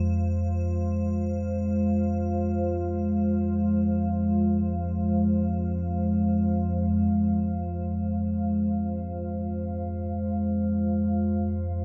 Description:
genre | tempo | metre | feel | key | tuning
dark ambient drone | free time | none | none | F minor | A4 = 440 Hz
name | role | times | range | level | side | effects
deep dark ambient pad | sustained chords | 0.0-11.8 s | Ab3 to F5 | -28 LUFS | equal | chorus, built-in reverb
deep rumbling drone | drone | 0.0-11.8 s | F2 to F3 | -30 LUFS | equal | built-in reverb
icy glass pad | texture | 0.0-6.9 s | C5 | -51 LUFS | equal | chorus, built-in reverb
room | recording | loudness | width
wet cathedral reverb, RT60 5.5 s | cassette tape | -26 LUFS | mono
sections
0.0-6.9 A section; 6.9-11.8 B section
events
fade-out on ambient pad 0.0-6.9; filter sweep on synth drone 0.0-6.9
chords
0.0 Fm

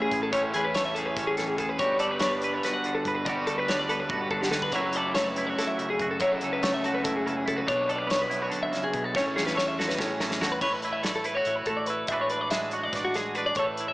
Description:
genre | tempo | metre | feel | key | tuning
math rock and midwest emo | 286 BPM (eighths) | 7/8 | straight | A major | A4 = 440 Hz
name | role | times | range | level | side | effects
twelve-string electric guitar | accompaniment | 0.0-13.9 s | A2 to C#5 | -30 LUFS | right 2 dB | none
twelve-string electric guitar | arpeggios | 0.0-13.9 s | F#4 to F#5 | -28 LUFS | left 1 dB | tape echo
crunchy overdriven guitar | riff | 0.0-10.6 s | F#2 to E4 | -33 LUFS | left 1 dB | slapback echo
fingered electric bass | bass | 0.1-13.9 s | F#1 to B2 | -43 LUFS | equal | none
loose indie drum kit | drums | 0.1-13.9 s | crash cymbal, hi-hat, kick drum, snare drum, toms | -34 LUFS | equal | none
room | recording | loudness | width
wet lush hall reverb, RT60 2.1 s | big arena sound, small speaker sound | -25 LUFS | side -19 dB against mid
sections
0.0-10.6 A section; 10.6-13.9 B section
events
drum fill 4.1-4.7, 9.1-10.6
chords
0.0 Amaj7; 1.8 Gmaj7; 4.7 F#m7; 7.7 Bm7; 9.1 A6; 10.6 D69/A; 12.1 E9/A

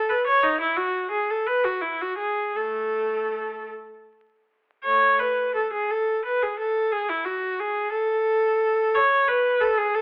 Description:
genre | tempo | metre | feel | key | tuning
classical, baroque-style suite movement for unaccompanied viola | 51-60 BPM (dotted quarters) | 6/8 | rubato | A major | A4 = 440 Hz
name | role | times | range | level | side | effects
clear viola | solo | 0.0-10.0 s | A3 to C#5 | -24 LUFS | equal | none
room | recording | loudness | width
moderate stone room reverb, RT60 1.2 s | vinyl crackle, telephone sound | -24 LUFS | mono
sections
0.0-4.8 A section; 4.8-10.0 B section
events
none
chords
none

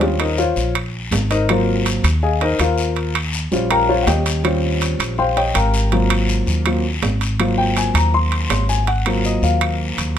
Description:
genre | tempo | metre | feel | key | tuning
Afro-Cuban jazz | 162 BPM | 4/4 | straight | Eb mixolydian | A4 = 440 Hz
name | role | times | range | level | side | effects
warm concert grand piano | accompaniment | 0.0-10.2 s | Gb3 to C6 | -19 LUFS | left 2 dB | none
upright bass | bass | 0.0-10.2 s | Ab1 to Eb2 | -20 LUFS | equal | none
guiro | percussion | 0.0-10.2 s | none | -28 LUFS | left 5 dB | none
timbales | percussion | 0.0-10.2 s | none | -25 LUFS | right 7 dB | none
claves | percussion | 0.2-9.8 s | none | -29 LUFS | right 6 dB | none
room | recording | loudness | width
light reverb | close, detailed microphones | -16 LUFS | side -9 dB against mid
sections
0.0-10.2 A section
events
grand piano solo 0.0-10.2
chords
0.0 Eb13; 1.5 Ab13; 3.0 Eb13; 5.9 Ab13

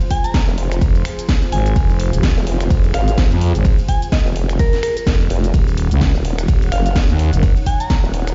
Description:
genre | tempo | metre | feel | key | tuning
bass house | 127 BPM | 4/4 | swing 58% on 16ths | F phrygian | A4 = 439 Hz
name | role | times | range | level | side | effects
dark analog pad | sustained chords | 0.0-8.3 s | Eb4 to Gb5 | -33 LUFS | equal | chorus, sidechain pumping
house drum kit | drums | 0.0-8.3 s | cabasa, finger snaps, hi-hat, ride cymbal, snare drum | -29 LUFS | equal | studio reverb
soft synth bell | melody | 0.1-7.9 s | Bb4 to Bb5 | -28 LUFS | equal | chorus, tape echo
electronic kick drum | drums | 0.1-8.0 s | none | -18 LUFS | equal | studio reverb
formant-sweep wobble bass | bass | 0.5-8.3 s | Eb1 to Ab1 | -20 LUFS | equal | chorus, overdrive, sidechain pumping
growling FM bass | bass | 0.8-7.5 s | Eb1 to F2 | -19 LUFS | equal | sidechain pumping
room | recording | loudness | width
little or no reverb | played on a big sound system in a bare room, large studio reverb, nothing above 7.6 kHz | -16 LUFS | mono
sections
0.0-8.3 A section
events
none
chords
0.0 Fm; 5.5 Ebm7

